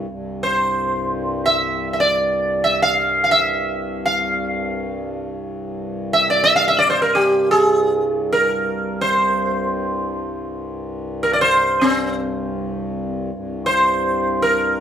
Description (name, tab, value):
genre	indian classical, Hindustani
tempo	free time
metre	none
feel	none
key	C raga charukeshi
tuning	A4 = 440 Hz
part	hand-pumped harmonium	drone	0.0-14.8 s	C2 to G2	-26 LUFS	left 1 dB	none
part	sitar	melody	0.4-14.8 s	C4 to F5	-17 LUFS	right 1 dB	none
room	wet studio reverb, RT60 0.8 s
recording	band playing live in one room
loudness	-16 LUFS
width	side -9 dB against mid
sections	0.1-13.3 A section; 13.3-14.8 A section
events	none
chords	none